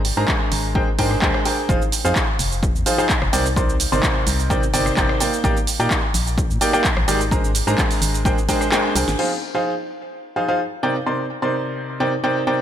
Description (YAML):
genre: piano house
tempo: 128 BPM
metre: 4/4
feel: straight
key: F dorian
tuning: A4 = 441 Hz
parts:
  - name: organ-like FM bass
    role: bass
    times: 0.0-9.2 s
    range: F1 to Bb2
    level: -23 LUFS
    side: left 1 dB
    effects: sidechain pumping
  - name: punchy analog drum machine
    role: drums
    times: 0.0-9.3 s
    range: crash cymbal, handclaps, hi-hat, rim click, shaker, snare drum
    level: -23 LUFS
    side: right 1 dB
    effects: none
  - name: bright baby grand piano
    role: riff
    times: 0.2-12.6 s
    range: C3 to C6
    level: -20 LUFS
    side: equal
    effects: sidechain pumping, tape echo
  - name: electronic kick drum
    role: drums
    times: 0.3-8.6 s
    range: none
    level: -22 LUFS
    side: equal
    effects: none
room: light reverb, digital ambience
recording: none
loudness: -17 LUFS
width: side -10 dB against mid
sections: 0.0-9.2 A section; 9.2-12.6 B section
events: kick drops out 8.7-9.2; drum fill 8.7-9.2; band accent 9.1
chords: 0.0 Abmaj9#11; 1.7 Fm7; 3.3 Cm9; 5.4 Ebmaj7/Bb; 7.3 Abmaj9#11; 9.2 Fm7; 10.8 Cm9